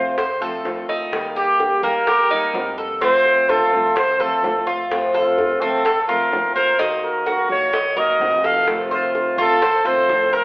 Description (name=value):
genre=latin, Cuban son and guajira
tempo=127 BPM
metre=4/4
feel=straight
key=unclear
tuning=A4 = 444 Hz
part: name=breathy trumpet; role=melody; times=0.0-10.4 s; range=F4 to F5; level=-18 LUFS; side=equal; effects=none
part: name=fingerpicked steel-string acoustic guitar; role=accompaniment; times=0.0-10.4 s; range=C3 to G4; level=-25 LUFS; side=left 1 dB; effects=none
part: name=Cuban tres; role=arpeggios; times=0.0-10.4 s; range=Bb3 to Eb5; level=-22 LUFS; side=equal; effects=none
part: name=upright bass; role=bass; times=0.0-10.4 s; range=F1 to F2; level=-40 LUFS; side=equal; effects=none
part: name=bongos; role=percussion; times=0.2-10.4 s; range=none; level=-27 LUFS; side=equal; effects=none
room=wet stone room reverb, RT60 1.4 s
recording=band playing live in one room, telephone sound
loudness=-16 LUFS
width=side -25 dB against mid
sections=0.0-10.4 A section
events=none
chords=0.0 F; 1.1 Eb; 3.0 F; 6.8 Ebm; 8.7 F7